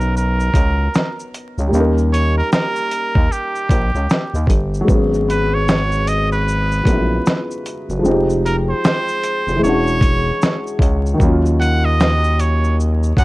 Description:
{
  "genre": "lo-fi hip hop",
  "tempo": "76 BPM",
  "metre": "4/4",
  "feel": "swing 62% on 16ths",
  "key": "unclear",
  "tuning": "A4 = 441 Hz",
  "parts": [
    { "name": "trumpet with straight mute", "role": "melody", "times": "0.0-13.2 s", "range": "G4 to F#5", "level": "-21 LUFS", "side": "right 2 dB", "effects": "low-pass filter" },
    { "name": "dark upright piano", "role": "accompaniment", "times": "0.0-13.2 s", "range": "D#3 to C#5", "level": "-21 LUFS", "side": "left 1 dB", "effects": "cassette tape, low-pass filter" },
    { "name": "growling FM bass", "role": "bass", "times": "0.0-13.2 s", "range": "E1 to F#2", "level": "-17 LUFS", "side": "equal", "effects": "none" },
    { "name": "dusty soul sampler-style drum kit", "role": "drums", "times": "0.0-13.2 s", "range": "hi-hat, kick drum, shaker, snare drum", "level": "-17 LUFS", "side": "equal", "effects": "overdrive" }
  ],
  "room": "light reverb",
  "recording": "vinyl crackle",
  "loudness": "-14 LUFS",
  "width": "side -20 dB against mid",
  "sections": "0.0-13.2 A section",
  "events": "none",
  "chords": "0.0 Bmaj9; 1.7 D#7; 4.9 G#m11; 8.0 Fm9; 9.6 E13; 11.2 D#m9",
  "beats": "0.14 0.93 | 1.72 2.51 3.30 4.09 | 4.88 5.67 6.46 7.25 | 8.04 8.83 9.62 10.41 | 11.20 11.99 12.78"
}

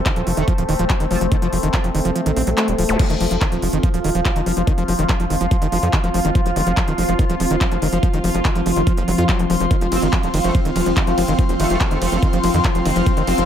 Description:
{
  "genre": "psychedelic trance",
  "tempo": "143 BPM",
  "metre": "4/4",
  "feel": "straight",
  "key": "F major",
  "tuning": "A4 = 440 Hz",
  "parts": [
    { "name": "evolving wavetable pad", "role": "sustained chords", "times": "0.0-13.5 s", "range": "F3 to F4", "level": "-24 LUFS", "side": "left 1 dB", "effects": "phaser, built-in reverb, sidechain pumping" },
    { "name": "tight sequencer bass", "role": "bass", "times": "0.0-13.4 s", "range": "Eb1 to F2", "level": "-23 LUFS", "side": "equal", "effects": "none" },
    { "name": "overdriven acid bass", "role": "riff", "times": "0.1-13.4 s", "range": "Eb3 to F4", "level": "-22 LUFS", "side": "moving between left 5 dB and right 5 dB", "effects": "distortion, auto-pan, sidechain pumping, dub echo" },
    { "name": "drum and bass drum kit", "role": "drums", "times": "0.1-13.5 s", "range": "crash cymbal, handclaps, hi-hat, ride cymbal", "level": "-26 LUFS", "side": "equal", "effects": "none" },
    { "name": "electronic kick drum", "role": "drums", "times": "0.1-13.1 s", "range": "none", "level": "-18 LUFS", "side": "equal", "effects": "none" },
    { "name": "metallic wobble bass", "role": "second line", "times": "0.4-1.5, 9.9-13.4 s", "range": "F3 to C4", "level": "-33 LUFS", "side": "right 2 dB", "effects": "none" },
    { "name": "zap", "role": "sound effects", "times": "2.9-3.0 s", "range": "none", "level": "-26 LUFS", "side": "equal", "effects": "none" },
    { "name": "airy breathy pad", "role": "texture", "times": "3.4-13.5 s", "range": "C4 to C6", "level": "-23 LUFS", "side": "equal", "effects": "chorus, phaser, sidechain pumping" }
  ],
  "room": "light reverb, digital ambience",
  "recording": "none",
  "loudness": "-16 LUFS",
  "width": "side -9 dB against mid",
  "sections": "0.0-3.0 A section; 3.0-13.5 B section",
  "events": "kick drops out 2.2-3.0; drop 3.0-13.5",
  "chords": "0.0 F5",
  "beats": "0.06 0.48 0.90 | 1.32 1.74 2.16 2.58 | 3.00 3.41 3.83 4.25 | 4.67 5.09 5.51 5.93 | 6.35 6.77 7.19 7.61 | 8.03 8.45 8.87 9.29 | 9.71 10.13 10.55 10.97 | 11.39 11.81 12.23 12.64 | 13.06"
}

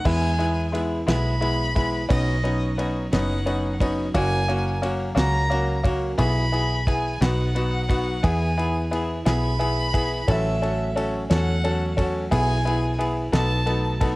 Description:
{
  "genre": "six-eight pop ballad",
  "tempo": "59 BPM (dotted quarters)",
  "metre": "6/8",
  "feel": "straight",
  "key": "E major",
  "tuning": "A4 = 440 Hz",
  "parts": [
    { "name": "warm violin", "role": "melody", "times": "0.0-14.0 s", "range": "D#5 to B5", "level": "-29 LUFS", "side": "equal", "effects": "cassette tape" },
    { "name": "bright grand piano", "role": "accompaniment", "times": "0.0-14.2 s", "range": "G#3 to A4", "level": "-26 LUFS", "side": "left 1 dB", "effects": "cassette tape" },
    { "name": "twelve-string electric guitar", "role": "arpeggios", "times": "0.0-14.2 s", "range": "F#2 to A#4", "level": "-33 LUFS", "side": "right 2 dB", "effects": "spring reverb, cassette tape" },
    { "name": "fingered electric bass", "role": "bass", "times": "0.1-14.2 s", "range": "F#1 to E2", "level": "-24 LUFS", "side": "equal", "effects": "none" },
    { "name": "damped 70s drum kit", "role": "drums", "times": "0.1-14.2 s", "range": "crash cymbal, kick drum, ride cymbal, snare drum", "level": "-27 LUFS", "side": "equal", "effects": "none" }
  ],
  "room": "light reverb",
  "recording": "home recording on cassette",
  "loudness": "-20 LUFS",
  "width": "side -20 dB against mid",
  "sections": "0.1-14.2 A section",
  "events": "none",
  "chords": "0.1 E; 2.1 Badd9; 4.1 F#; 6.2 E/B; 7.2 B; 8.2 E; 10.3 A6; 12.3 E/B; 13.3 B7",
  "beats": "| 0.05 1.08 | 2.10 3.12 | 4.14 5.16 | 6.18 7.21 | 8.24 9.27 | 10.29 11.31 | 12.32 13.34"
}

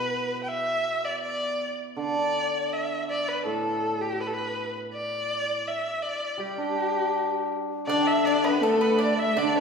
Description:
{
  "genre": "chinese traditional, Chinese chamber ensemble",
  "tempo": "81 BPM",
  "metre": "2/4",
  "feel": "rubato",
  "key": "unclear",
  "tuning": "A4 = 440 Hz",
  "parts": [
    { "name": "rich erhu", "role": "melody", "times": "0.0-9.6 s", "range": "G4 to G5", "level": "-27 LUFS", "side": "equal", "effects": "none" },
    { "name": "hammered dulcimer", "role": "accompaniment", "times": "0.0-9.6 s", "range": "A2 to D4", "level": "-30 LUFS", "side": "right 2 dB", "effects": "none" },
    { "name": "large dizi", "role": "second line", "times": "7.9-9.6 s", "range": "A4 to G5", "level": "-27 LUFS", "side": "left 3 dB", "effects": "none" },
    { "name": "pipa", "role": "second line", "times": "7.9-9.6 s", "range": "A3 to D4", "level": "-31 LUFS", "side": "right 3 dB", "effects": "none" },
    { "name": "warm horsehead fiddle", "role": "second line", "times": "7.9-9.6 s", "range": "A3 to D4", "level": "-26 LUFS", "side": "left 3 dB", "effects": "none" }
  ],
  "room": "wet recital hall reverb, RT60 1.7 s",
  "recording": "heard from further back in the room",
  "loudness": "-24 LUFS",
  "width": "side -5 dB against mid",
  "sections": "0.0-7.9 A section; 7.9-9.6 B section",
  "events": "none",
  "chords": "none",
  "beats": "| 0.49 1.23 | 1.97 2.72 | 3.45 4.19 | 4.92 5.65 | 6.39 7.14 | 7.89 8.64 | 9.38"
}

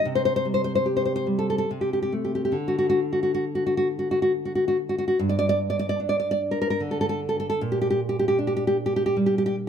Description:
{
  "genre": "romantic piece for solo classical guitar",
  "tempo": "67-78 BPM",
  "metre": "3/4",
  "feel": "rubato",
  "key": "G minor",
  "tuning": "A4 = 440 Hz",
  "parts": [
    { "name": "nylon-string guitar", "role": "solo", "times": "0.0-9.7 s", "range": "G2 to D5", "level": "-22 LUFS", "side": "equal", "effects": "none" }
  ],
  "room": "light reverb",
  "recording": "close, detailed microphones",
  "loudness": "-22 LUFS",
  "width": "side -8 dB against mid",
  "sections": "0.0-5.2 A section; 5.2-9.7 B section",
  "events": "none",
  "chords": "0.1 C5; 2.5 N.C.; 5.2 G5; 7.6 Gm/Bb",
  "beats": "| 0.07 0.86 1.69 | 2.55 3.42 4.30 | 5.17 5.99 6.80 | 7.59 8.37 9.15"
}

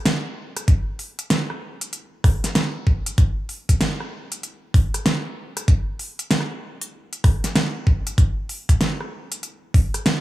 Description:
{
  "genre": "glitch hop",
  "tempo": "96 BPM",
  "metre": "4/4",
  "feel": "swing 64% on 16ths",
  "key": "none",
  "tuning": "none",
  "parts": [
    { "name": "pop drum kit", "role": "drums", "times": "0.1-10.2 s", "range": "hi-hat, rim click, snare drum", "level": "-23 LUFS", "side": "right 1 dB", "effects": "small room ambience" },
    { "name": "electronic kick drum", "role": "drums", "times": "0.7-9.9 s", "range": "none", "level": "-17 LUFS", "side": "equal", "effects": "small room ambience" }
  ],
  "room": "light reverb",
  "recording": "small room ambience",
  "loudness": "-19 LUFS",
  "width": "side -16 dB against mid",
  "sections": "0.0-10.2 A section",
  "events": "none",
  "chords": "none",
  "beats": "0.06 | 0.68 1.31 1.93 2.56 | 3.18 3.81 4.43 5.06 | 5.68 6.31 6.93 7.56 | 8.18 8.81 9.43 10.06"
}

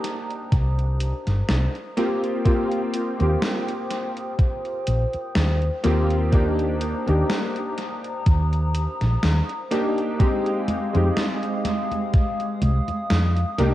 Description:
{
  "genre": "vaporwave",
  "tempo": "62 BPM",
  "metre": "4/4",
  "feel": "swing 55% on 16ths",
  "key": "C minor",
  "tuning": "A4 = 437 Hz",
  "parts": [
    { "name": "warm electric grand piano", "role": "accompaniment", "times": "0.0-13.7 s", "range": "Ab3 to G4", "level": "-25 LUFS", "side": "equal", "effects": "ensemble chorus, vintage 12-bit sampler grit, tape echo" },
    { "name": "warbly tape-like pad", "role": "sustained chords", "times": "0.0-13.7 s", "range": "Ab3 to Eb6", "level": "-30 LUFS", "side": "left 1 dB", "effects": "chorus, built-in reverb" },
    { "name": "gated 80s digital drum machine", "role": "drums", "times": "0.0-13.7 s", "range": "congas, hi-hat, snare drum", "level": "-28 LUFS", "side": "equal", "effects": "gated reverb, gated reverb snare, studio reverb, tape echo" },
    { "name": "woody fretless electric bass", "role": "bass", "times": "0.5-13.7 s", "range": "G1 to F2", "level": "-21 LUFS", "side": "equal", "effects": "lush chorus" },
    { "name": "electronic kick drum", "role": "drums", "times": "0.5-12.3 s", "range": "none", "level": "-18 LUFS", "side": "equal", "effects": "studio reverb" }
  ],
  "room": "light reverb, digital ambience",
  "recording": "echo-heavy mix, cassette tape",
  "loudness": "-20 LUFS",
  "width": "side -14 dB against mid",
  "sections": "0.0-13.7 A section",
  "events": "none",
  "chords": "0.0 Cm7; 2.0 Eb6; 6.3 Cm7/Eb; 10.2 Fm7",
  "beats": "0.52 1.49 | 2.46 3.42 4.39 5.36 | 6.33 7.29 8.26 9.23 | 10.20 11.16 12.13 13.10"
}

